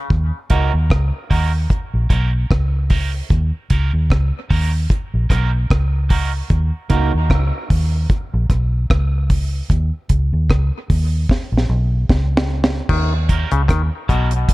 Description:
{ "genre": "dub reggae", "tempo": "75 BPM", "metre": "4/4", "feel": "swing 56% on 16ths", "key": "Eb minor", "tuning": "A4 = 440 Hz", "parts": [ { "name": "vintage muted fingered electric bass", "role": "bass", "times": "0.1-14.4 s", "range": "Bb1 to Eb2", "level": "-17 LUFS", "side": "equal", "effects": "none" }, { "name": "deep reggae drum kit", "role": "drums", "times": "0.1-14.5 s", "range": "crash cymbal, hi-hat, kick drum, rim click, snare drum", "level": "-18 LUFS", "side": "equal", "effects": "none" }, { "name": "electric guitar at the edge of break-up", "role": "accompaniment", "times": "0.5-7.1, 13.3-14.3 s", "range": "Bb3 to Bb4", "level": "-26 LUFS", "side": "right 6 dB", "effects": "high-pass filter, dub echo" }, { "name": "bright clav", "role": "riff", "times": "12.9-14.3 s", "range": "Cb3 to Eb3", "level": "-25 LUFS", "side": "left 6 dB", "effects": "dub echo" } ], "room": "studio reverb", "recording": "dark, warm production", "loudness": "-15 LUFS", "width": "side -19 dB against mid", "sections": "0.1-12.9 A section; 12.9-14.5 B section", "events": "drum fill 11.3-12.9", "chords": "0.1 Ebm; 9.7 Eb5; 12.9 Ebm" }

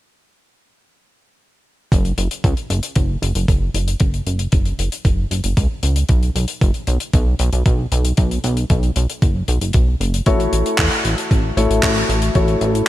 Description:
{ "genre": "italo disco", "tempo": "115 BPM", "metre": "4/4", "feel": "straight", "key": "unclear", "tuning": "A4 = 440 Hz", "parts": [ { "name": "chorused synth bass", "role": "bass", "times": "1.9-12.8 s", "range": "F#1 to E2", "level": "-18 LUFS", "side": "equal", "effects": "none" }, { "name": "damped 70s drum kit", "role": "drums", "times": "1.9-12.9 s", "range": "handclaps, hi-hat", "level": "-24 LUFS", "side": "left 2 dB", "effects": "gated reverb" }, { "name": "electronic kick drum", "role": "drums", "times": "1.9-12.5 s", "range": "none", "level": "-17 LUFS", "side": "equal", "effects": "none" }, { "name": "dark concert grand piano", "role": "stabs", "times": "10.3-12.9 s", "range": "A3 to C#5", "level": "-19 LUFS", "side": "left 3 dB", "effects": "wide subtle chorus, shimmer reverb, digital delay" } ], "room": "light reverb, small room ambience", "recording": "bright 1980s-style digital production", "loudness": "-15 LUFS", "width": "side -15 dB against mid", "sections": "1.9-12.9 A section", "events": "none", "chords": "1.9 F#5; 6.1 B5; 10.3 A6" }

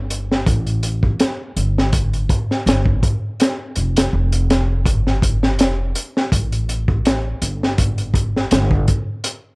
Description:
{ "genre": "trip hop", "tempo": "82 BPM", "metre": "4/4", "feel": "swing 54% on 16ths", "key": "unclear", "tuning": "A4 = 440 Hz", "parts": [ { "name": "upright bass", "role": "bass", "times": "0.0-8.8 s", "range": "F1 to A1", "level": "-20 LUFS", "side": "equal", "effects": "none" }, { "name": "crunchy breakbeat drum kit", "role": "drums", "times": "0.1-9.4 s", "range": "hi-hat, kick drum, snare drum", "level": "-17 LUFS", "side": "equal", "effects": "cassette tape" } ], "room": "little or no reverb", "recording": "home recording on cassette", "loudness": "-16 LUFS", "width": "side -36 dB against mid", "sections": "0.0-9.6 A section", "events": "none", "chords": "none" }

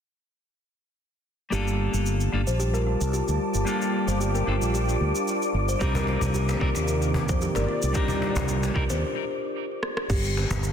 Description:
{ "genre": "organic downtempo", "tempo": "112 BPM", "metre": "4/4", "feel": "swing 54% on 16ths", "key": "G minor", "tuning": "A4 = 441 Hz", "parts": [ { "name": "clean electric guitar", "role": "accompaniment", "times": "1.5-8.8 s", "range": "G3 to Bb4", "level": "-31 LUFS", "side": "left 3 dB", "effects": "sidechain pumping, ping-pong delay" }, { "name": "warm analog pad", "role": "sustained chords", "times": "1.5-10.7 s", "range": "C3 to A5", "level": "-32 LUFS", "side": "right 1 dB", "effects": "chorus, tremolo, sidechain pumping" }, { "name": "kalimba", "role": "arpeggios", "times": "1.5-10.2 s", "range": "F4 to C5", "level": "-31 LUFS", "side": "left 1 dB", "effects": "vintage 12-bit sampler grit, low-pass filter, ping-pong delay" }, { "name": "mellow fretless electric bass", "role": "bass", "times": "1.5-10.7 s", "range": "G1 to F2", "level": "-26 LUFS", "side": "right 1 dB", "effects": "sidechain pumping" }, { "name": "organic electronic drum kit", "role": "drums", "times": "1.5-10.7 s", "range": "crash cymbal, rim click, shaker", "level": "-35 LUFS", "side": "equal", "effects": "overdrive" }, { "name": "wind-like tuned noise texture", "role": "texture", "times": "2.6-10.7 s", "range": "Bb3 to D5", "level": "-34 LUFS", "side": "left 2 dB", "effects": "built-in reverb" }, { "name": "electronic kick drum", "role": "drums", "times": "5.8-10.2 s", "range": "none", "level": "-28 LUFS", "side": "right 1 dB", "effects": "overdrive" }, { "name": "cajon", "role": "percussion", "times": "5.9-10.6 s", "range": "none", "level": "-32 LUFS", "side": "left 1 dB", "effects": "none" } ], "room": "light reverb", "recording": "dense, heavily limited modern master", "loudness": "-23 LUFS", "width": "side -8 dB against mid", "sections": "1.5-10.1 A section", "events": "break 9.0-10.1; drum fill 9.8", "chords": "1.5 Gm9; 5.8 Cm9; 10.1 Gm9" }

